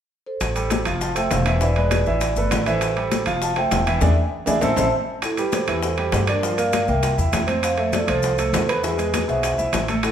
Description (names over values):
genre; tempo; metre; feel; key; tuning
latin, salsa; 200 BPM; 4/4; straight; A minor; A4 = 441 Hz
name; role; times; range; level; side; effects
vibraphone with soft mallets; melody; 0.3-10.1 s; E4 to A5; -24 LUFS; right 1 dB; none
upright bass; bass; 0.4-10.1 s; E1 to G2; -24 LUFS; left 1 dB; none
bongos; percussion; 0.4-10.1 s; none; -29 LUFS; left 5 dB; none
congas; percussion; 0.4-10.1 s; none; -31 LUFS; left 2 dB; none
maracas; percussion; 0.4-10.1 s; none; -34 LUFS; left 6 dB; none
timbales; percussion; 0.4-10.1 s; none; -28 LUFS; right 3 dB; none
clear concert grand piano; accompaniment; 0.6-10.1 s; B2 to F5; -25 LUFS; right 3 dB; none
room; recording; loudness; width
wet large studio reverb, RT60 1.3 s; band playing live in one room; -18 LUFS; side -9 dB against mid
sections
0.4-5.2 A section; 5.2-10.1 B section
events
band accent 4.0-5.2; drum fill 4.8-5.2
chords
0.4 Am7; 1.0 F; 1.6 E7; 2.2 Asus2; 2.8 Am7; 3.4 F; 4.0 E7; 4.6 Am; 5.2 Am7; 6.4 Gm7; 7.0 C7; 7.6 Fmaj7; 8.8 E